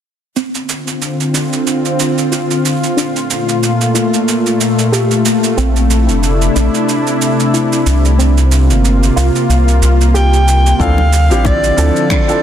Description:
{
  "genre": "sunset chillout",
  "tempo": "92 BPM",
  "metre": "4/4",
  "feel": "swing 56% on 16ths",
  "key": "D minor",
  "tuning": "A4 = 442 Hz",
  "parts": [
    { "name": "lush unison pad", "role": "sustained chords", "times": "0.7-12.4 s", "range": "Bb2 to F4", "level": "-14 LUFS", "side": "left 1 dB", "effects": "chorus" },
    { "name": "soft round pluck", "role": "arpeggios", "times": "0.4-10.3 s", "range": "C4 to G4", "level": "-22 LUFS", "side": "right 1 dB", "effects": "ensemble chorus, ping-pong delay" },
    { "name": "electronic cabasa and finger snaps", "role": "drums", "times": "0.4-12.4 s", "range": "none", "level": "-21 LUFS", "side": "right 6 dB", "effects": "overdrive, soft clipping on snare" },
    { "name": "round analog bass", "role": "bass", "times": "5.6-11.9 s", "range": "F1 to D2", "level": "-11 LUFS", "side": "equal", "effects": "tube saturation" },
    { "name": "breathy soprano saxophone", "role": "melody", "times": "10.2-12.4 s", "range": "D5 to G5", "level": "-15 LUFS", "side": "equal", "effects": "tape echo" },
    { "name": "warm grand piano", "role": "accompaniment", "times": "10.8-12.4 s", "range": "F3 to A4", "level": "-17 LUFS", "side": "moving between left 5 dB and right 2 dB", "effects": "auto-pan, low-pass filter, ping-pong delay" },
    { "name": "electronic kick drum", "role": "drums", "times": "10.8-12.2 s", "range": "none", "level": "-16 LUFS", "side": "equal", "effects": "overdrive" },
    { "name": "bongos", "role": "percussion", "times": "11.0-12.3 s", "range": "none", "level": "-24 LUFS", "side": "left 4 dB", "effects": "none" }
  ],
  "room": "moderate lush hall reverb, RT60 2.8 s",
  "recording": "dense, heavily limited modern master",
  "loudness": "-10 LUFS",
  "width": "side -9 dB against mid",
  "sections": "0.4-10.8 A section; 10.8-12.4 B section",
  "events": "filter sweep on synth pluck 0.4-10.8",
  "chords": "0.4 Dm7; 3.0 Gm9; 5.6 Bbmaj9#11; 8.2 C7sus4; 10.8 Dm7",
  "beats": "| 0.36 1.01 1.67 2.32 | 2.97 3.62 4.27 4.93 | 5.58 6.23 6.88 7.54 | 8.19 8.84 9.49 10.14 | 10.80 11.45 12.10"
}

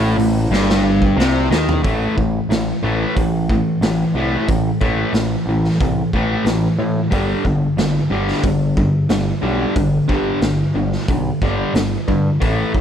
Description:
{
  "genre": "classic rock",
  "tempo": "91 BPM",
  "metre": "4/4",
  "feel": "straight",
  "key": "A minor",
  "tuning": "A4 = 440 Hz",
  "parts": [
    { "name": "distorted electric guitar", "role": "riff", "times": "0.0-12.8 s", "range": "G2 to A3", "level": "-18 LUFS", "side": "equal", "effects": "distortion" },
    { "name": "growling picked electric bass", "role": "bass", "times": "0.0-12.8 s", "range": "G1 to A2", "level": "-22 LUFS", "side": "equal", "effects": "overdrive" },
    { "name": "raw garage drum kit", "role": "drums", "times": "0.2-12.8 s", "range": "hi-hat, kick drum, snare drum, toms", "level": "-22 LUFS", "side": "equal", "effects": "none" }
  ],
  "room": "small room ambience",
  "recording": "none",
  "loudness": "-15 LUFS",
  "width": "side -8 dB against mid",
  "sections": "0.0-1.8 A section; 1.8-12.8 B section",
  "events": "drum fill 0.5-1.8",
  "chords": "0.0 Am; 1.8 A5; 7.1 G5",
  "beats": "0.53 1.18 | 1.84 2.50 3.16 3.82 | 4.48 5.14 5.80 6.46 | 7.12 7.78 8.44 9.10 | 9.76 10.42 11.08 11.74 | 12.41"
}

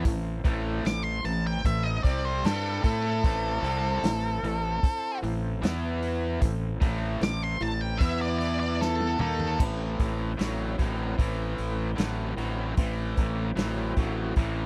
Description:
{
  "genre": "blues rock power trio and southern rock",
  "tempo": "76 BPM",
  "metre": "4/4",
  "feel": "straight",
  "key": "A minor",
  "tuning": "A4 = 445 Hz",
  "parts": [
    { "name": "octave-fuzz lead guitar", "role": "melody", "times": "0.0-9.6 s", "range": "A4 to D6", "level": "-33 LUFS", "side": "equal", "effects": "distortion, slapback echo" },
    { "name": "overdriven tonewheel organ", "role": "sustained chords", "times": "0.0-14.7 s", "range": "B3 to G5", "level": "-42 LUFS", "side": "equal", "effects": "none" },
    { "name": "distorted electric guitar", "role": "riff", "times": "0.0-14.7 s", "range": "A2 to A4", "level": "-34 LUFS", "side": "equal", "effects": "overdrive" },
    { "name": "vintage drum kit", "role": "drums", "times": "0.0-14.6 s", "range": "crash cymbal, hi-hat, kick drum, snare drum, toms", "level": "-28 LUFS", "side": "equal", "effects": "none" },
    { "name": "fuzz fingered electric bass", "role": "bass", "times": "0.1-14.7 s", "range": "A1 to A2", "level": "-33 LUFS", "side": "equal", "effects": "overdrive" }
  ],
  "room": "little or no reverb",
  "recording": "dry, close 1970s-style studio recording",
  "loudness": "-28 LUFS",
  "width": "mono",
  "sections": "0.0-9.6 A section; 9.6-14.7 B section",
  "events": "lead electric guitar solo 0.0-9.6; drum fill 8.8-9.6",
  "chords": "0.1 Am; 5.6 E5; 6.4 Am; 8.0 E5; 9.2 D#5; 9.6 Am9",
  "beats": "| 0.05 0.85 1.65 2.44 | 3.24 4.03 4.83 5.62 | 6.42 7.21 8.01 8.80 | 9.60 10.39 11.19 11.98 | 12.78 13.57 14.37"
}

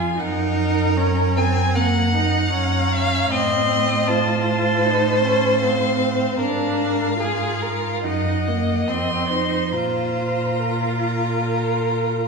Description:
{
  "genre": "classical, slow romantic movement for string quartet",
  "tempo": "68-78 BPM",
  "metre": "4/4",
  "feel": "rubato",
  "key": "Bb minor",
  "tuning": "A4 = 437 Hz",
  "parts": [
    { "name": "warm violin", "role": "melody", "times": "0.0-12.3 s", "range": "F5 to C6", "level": "-27 LUFS", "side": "left 3 dB", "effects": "none" },
    { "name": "rich viola", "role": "accompaniment", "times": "0.0-12.3 s", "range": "Bb3 to F4", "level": "-24 LUFS", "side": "right 2 dB", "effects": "none" },
    { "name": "rich cello", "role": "bass", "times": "0.0-12.3 s", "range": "F2 to Bb2", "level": "-23 LUFS", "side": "right 3 dB", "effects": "none" },
    { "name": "rich violin", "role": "second line", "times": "0.2-12.3 s", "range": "Ab4 to Ab5", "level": "-22 LUFS", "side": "left 1 dB", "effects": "none" }
  ],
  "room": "wet concert hall reverb, RT60 1.8 s",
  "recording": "recorded in a church or concert hall",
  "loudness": "-18 LUFS",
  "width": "side -4 dB against mid",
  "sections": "0.0-12.3 A section",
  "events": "none",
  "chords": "0.2 Ebm/Gb; 3.3 F7/A; 6.4 Bb7/Ab; 8.0 Ebm/Gb; 8.9 F5; 9.7 Bb5",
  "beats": "| 0.19 0.97 1.75 2.53 | 3.30 4.07 4.84 5.61 | 6.39 7.18 8.05 8.87 | 9.72 10.58 11.44"
}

